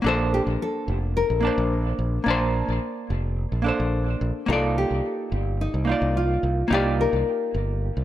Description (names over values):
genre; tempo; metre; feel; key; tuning
sunset chillout; 108 BPM; 4/4; straight; unclear; A4 = 440 Hz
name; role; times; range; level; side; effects
hollow-body jazz guitar; accompaniment; 0.0-8.0 s; Bb3 to A5; -26 LUFS; equal; auto-pan, tape echo
modern bright fingered electric bass; bass; 0.0-8.0 s; F1 to C2; -25 LUFS; equal; none
nylon-string guitar; melody; 0.1-8.0 s; Eb4 to Bb4; -27 LUFS; left 2 dB; analog delay
room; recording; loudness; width
moderate spring reverb, RT60 1.6 s, studio ambience; echo-heavy mix; -21 LUFS; side -12 dB against mid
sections
0.0-8.0 A section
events
none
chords
0.0 Bbmaj9; 4.5 Cm11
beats
| 0.05 0.60 1.16 1.71 | 2.27 2.82 3.38 3.94 | 4.49 5.05 5.60 6.16 | 6.71 7.27 7.82